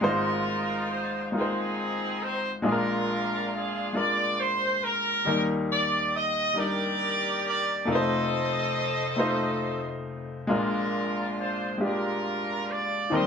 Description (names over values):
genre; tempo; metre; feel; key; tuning
slow gospel; 46 BPM (dotted quarters); 6/8; straight; unclear; A4 = 440 Hz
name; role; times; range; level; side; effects
clear horn section; melody; 0.0-13.3 s; C4 to Eb5; -27 LUFS; right 1 dB; none
clear baby grand piano; accompaniment; 0.0-13.3 s; F1 to C5; -28 LUFS; left 1 dB; none
room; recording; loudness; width
wet studio ambience, RT60 0.5 s; band playing live in one room; -25 LUFS; side -6 dB against mid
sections
0.0-13.3 A section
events
none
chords
0.0 Fm7/Ab; 2.6 Bb7; 5.3 Ebmaj7; 7.9 F7; 10.5 Bb7